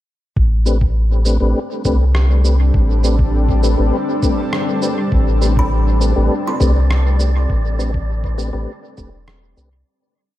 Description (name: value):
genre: ambient dub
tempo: 101 BPM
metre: 4/4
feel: straight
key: A minor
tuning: A4 = 440 Hz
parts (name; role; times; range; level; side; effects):
- granular cloud pad; sustained chords; 1.6-9.9 s; G3 to A4; -23 LUFS; left 1 dB; built-in reverb
- soft dub sub bass; bass; 0.4-9.8 s; E1 to C2; -15 LUFS; equal; none
- electronic kick drum; drums; 0.4-9.1 s; none; -19 LUFS; equal; none
- mellow tonewheel organ; stabs; 0.7-9.7 s; A3 to B4; -23 LUFS; left 2 dB; chorus vibrato, slow rotary speaker, dub echo
- electronic cabasa and rim click; drums; 0.7-9.7 s; none; -28 LUFS; right 2 dB; dub echo
- wind-like tuned noise texture; texture; 6.0-9.9 s; D5; -33 LUFS; right 1 dB; built-in reverb
- kalimba; arpeggios; 5.6-7.8 s; B5 to C6; -27 LUFS; right 2 dB; tape echo
room: light reverb, digital ambience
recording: none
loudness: -14 LUFS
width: side -14 dB against mid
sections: 0.4-9.9 groove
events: fade-out 6.7-9.9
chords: 0.4 Am11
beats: | 0.37 0.96 1.55 2.15 | 2.74 3.34 3.93 4.52 | 5.12 5.71 6.31 6.90 | 7.50 8.09 8.68 9.28